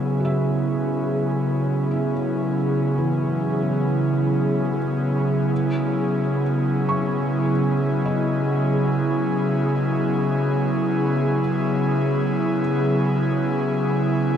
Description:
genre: ambient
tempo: free time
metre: none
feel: none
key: C# minor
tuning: A4 = 440 Hz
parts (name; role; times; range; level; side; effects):
- airy breathy pad; sustained chords; 0.0-14.4 s; C#3 to G#4; -20 LUFS; equal; chorus
- felt-muted upright piano; arpeggios; 0.2-14.4 s; E3 to C#6; -33 LUFS; equal; tape echo
room: wet cathedral reverb, RT60 5.1 s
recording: in a vast, echoing space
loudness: -19 LUFS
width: side -8 dB against mid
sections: 0.0-14.4 A section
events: fade-in on felt piano 0.0-14.4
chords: 0.0 E69/C#; 5.5 C#m11

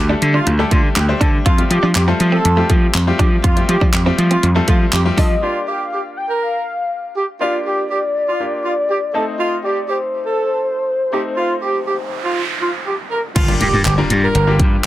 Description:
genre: dance-pop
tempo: 121 BPM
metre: 4/4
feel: straight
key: G minor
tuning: A4 = 440 Hz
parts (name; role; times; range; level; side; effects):
- mellow horn section; melody; 0.0-14.6 s; F4 to Bb4; -21 LUFS; right 2 dB; sidechain pumping, digital delay
- gritty slap bass; bass; 0.0-5.3, 13.4-14.8 s; G1 to F3; -16 LUFS; equal; overdrive, sidechain pumping
- bright grand piano; accompaniment; 0.1-14.9 s; G3 to C5; -24 LUFS; left 3 dB; sidechain pumping
- direct-recorded clean electric guitar; riff; 0.1-5.3 s; A3 to F4; -22 LUFS; right 4 dB; wide subtle chorus
- pop drum kit; drums; 0.2-5.3, 13.4-14.7 s; crash cymbal, handclaps, hi-hat, kick drum; -16 LUFS; equal; none
- warm velvety synth lead; melody; 5.2-12.8 s; C5 to G5; -21 LUFS; left 2 dB; chorus, digital delay
- noise sweep and impact; sound effects; 11.8-14.9 s; none; -25 LUFS; right 2 dB; none
room: little or no reverb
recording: dense, heavily limited modern master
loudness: -14 LUFS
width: side -15 dB against mid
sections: 0.0-5.4 A section; 5.4-13.4 B section; 13.4-14.9 A section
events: drop 0.0-5.4, 13.4-14.9; noise sweep 11.8-13.4; impact 13.4-14.9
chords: 0.0 Dsus4; 1.5 Fadd9; 5.4 Gm7; 9.1 Adim; 13.1 N.C.; 13.4 Gm7

